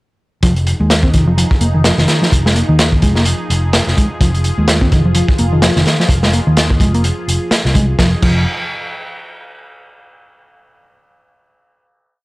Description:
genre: breakbeat, breaks.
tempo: 127 BPM.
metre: 4/4.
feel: swing 57% on 16ths.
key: F minor.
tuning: A4 = 440 Hz.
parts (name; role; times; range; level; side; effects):
phased analog pad; sustained chords; 0.7-8.2 s; F3 to Ab4; -25 LUFS; equal; phaser, chorus, vintage 12-bit sampler grit, sidechain pumping.
hollow-body short-scale picked electric bass; riff; 0.4-8.4 s; Eb3 to C4; -16 LUFS; equal; vintage 12-bit sampler grit, tape echo.
fingered electric bass; bass; 0.4-8.4 s; F1 to Eb2; -15 LUFS; equal; tube saturation.
crunchy breakbeat drum kit; drums; 0.4-8.3 s; crash cymbal, hi-hat, kick drum, snare drum; -15 LUFS; equal; none.
room: little or no reverb.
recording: dry, gritty hardware recording.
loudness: -11 LUFS.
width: side -21 dB against mid.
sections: 0.4-8.0 drop; 8.0-9.9 final chord.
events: drop 0.4-8.0.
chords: 0.4 Fm7; 8.0 N.C..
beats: | 0.43 0.90 1.37 1.85 | 2.32 2.79 3.26 3.74 | 4.21 4.68 5.15 5.63 | 6.10 6.57 7.04 7.52 | 7.99.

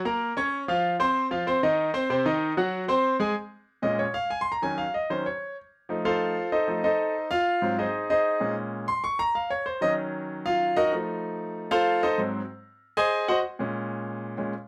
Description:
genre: latin.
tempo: 190 BPM.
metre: 4/4.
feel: straight.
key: Bb minor.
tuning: A4 = 440 Hz.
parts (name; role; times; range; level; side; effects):
bright concert grand piano; solo; 0.1-14.5 s; Ab2 to Db6; -26 LUFS; equal; none.
room: moderate studio reverb, RT60 0.6 s.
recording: none.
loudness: -26 LUFS.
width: mono.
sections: 0.0-3.4 A section; 3.4-14.7 B section.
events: grand piano solo 3.4-14.7.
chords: 0.0 Gbmaj7 (rootless); 0.8 F5; 2.1 Ab7; 3.4 Bbm7; 4.6 Ebm7; 5.9 F7; 7.1 Ab7; 8.4 Bbm9; 9.7 Ebm7; 10.9 F7; 12.2 Ab7; 13.4 Bbm7.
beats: 0.21 0.52 | 0.84 1.15 1.47 1.78 | 2.10 2.41 2.73 3.04 | 3.36 3.68 3.99 4.31 | 4.62 4.94 5.25 5.57 | 5.89 6.20 6.52 6.83 | 7.15 7.46 7.78 8.10 | 8.41 8.72 9.04 9.36 | 9.67 9.98 10.30 10.61 | 10.93 11.24 11.56 11.87 | 12.19 12.50 12.82 13.13 | 13.45 13.76 14.07 14.39.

